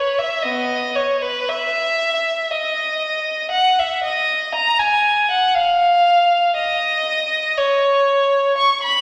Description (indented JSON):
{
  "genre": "classical, baroque-style suite movement for unaccompanied violin",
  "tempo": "60 BPM",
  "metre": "4/4",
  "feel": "rubato",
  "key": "unclear",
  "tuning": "A4 = 440 Hz",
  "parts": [
    { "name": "rich violin", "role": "solo", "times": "0.0-9.0 s", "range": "B3 to C#6", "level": "-18 LUFS", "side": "equal", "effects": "none" }
  ],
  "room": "wet scoring stage reverb, RT60 1.9 s",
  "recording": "vinyl crackle",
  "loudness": "-18 LUFS",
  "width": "mono",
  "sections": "0.0-9.0 A section",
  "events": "none",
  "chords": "none",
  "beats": "| 0.44 1.50 2.52 3.53 | 4.54 5.55 6.55 7.55 | 8.56"
}